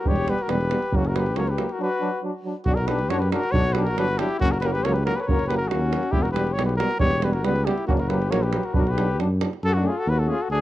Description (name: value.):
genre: balkan folk, Balkan brass band.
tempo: 138 BPM.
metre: 2/4.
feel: straight.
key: B harmonic minor.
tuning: A4 = 441 Hz.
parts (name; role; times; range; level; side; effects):
mellow trumpet; melody; 0.0-10.6 s; F#4 to C#5; -27 LUFS; equal; none.
warm flugelhorn; second line; 0.0-10.6 s; C#4 to A#4; -30 LUFS; left 6 dB; none.
clear trombone; accompaniment; 0.0-10.4 s; A#3 to D4; -32 LUFS; left 4 dB; none.
clear euphonium; accompaniment; 0.1-10.3 s; F#3 to A3; -30 LUFS; right 4 dB; none.
mellow tuba; bass; 0.1-10.6 s; E1 to F#2; -25 LUFS; equal; none.
davul; percussion; 0.1-9.6 s; none; -27 LUFS; right 2 dB; none.
room: studio reverb.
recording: dry, close 1970s-style studio recording.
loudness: -20 LUFS.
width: side -14 dB against mid.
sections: 0.0-2.7 A section; 2.7-9.6 A section.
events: break 1.8-2.7.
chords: 0.0 Em; 0.9 F#; 1.8 Bm; 4.4 F#; 6.1 Em; 7.9 F#; 8.8 Bm; 9.6 F#m.